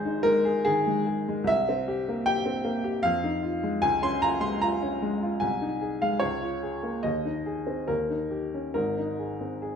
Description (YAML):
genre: classical, romantic character piece for solo piano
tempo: 68-78 BPM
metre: 3/4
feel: rubato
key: Ab major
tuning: A4 = 438 Hz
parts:
  - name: clear upright piano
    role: solo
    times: 0.0-9.8 s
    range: Ab1 to C6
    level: -25 LUFS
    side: equal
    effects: none
room: moderate recital hall reverb, RT60 1.4 s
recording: minimal, uncompressed stereo recording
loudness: -25 LUFS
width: side -7 dB against mid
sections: 0.0-9.8 A section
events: none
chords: 0.0 Ab; 1.5 C7; 3.0 Fm7; 3.8 Db; 5.4 Ab/C; 6.2 Bbm7/Db; 7.1 Ab/Eb; 7.9 Eb7; 8.7 Ab